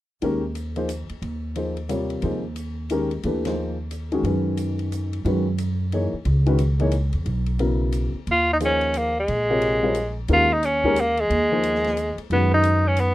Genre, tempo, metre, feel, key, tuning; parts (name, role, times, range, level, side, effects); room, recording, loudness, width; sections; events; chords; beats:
modal jazz; 179 BPM; 3/4; swing 62% on 8ths; A4 = 440 Hz
warm baby grand piano; accompaniment; 0.2-13.1 s; C3 to Db5; -25 LUFS; left 2 dB
upright bass; bass; 0.2-13.1 s; Bb1 to Gb2; -24 LUFS; right 1 dB
open jazz drum kit; drums; 0.2-13.1 s; hi-hat, kick drum, ride cymbal, snare drum; -40 LUFS; left 2 dB
bright tenor saxophone; melody; 8.3-13.1 s; Ab3 to F4; -20 LUFS; equal
little or no reverb; rough home demo mix; -20 LUFS; side -16 dB against mid
0.2-8.3 A section; 8.3-13.1 B section
0.2 Eb9sus4; 4.2 Gb9sus4; 8.3 Eb9sus4; 12.3 Gbsus4
| 0.21 0.55 0.89 | 1.22 1.56 1.89 | 2.23 2.56 2.90 | 3.24 3.57 3.91 | 4.24 4.58 4.92 | 5.25 5.59 5.92 | 6.26 6.59 6.93 | 7.27 7.60 7.94 | 8.27 8.61 8.95 | 9.28 9.62 9.95 | 10.29 10.62 10.96 | 11.29 11.63 11.97 | 12.30 12.64 12.97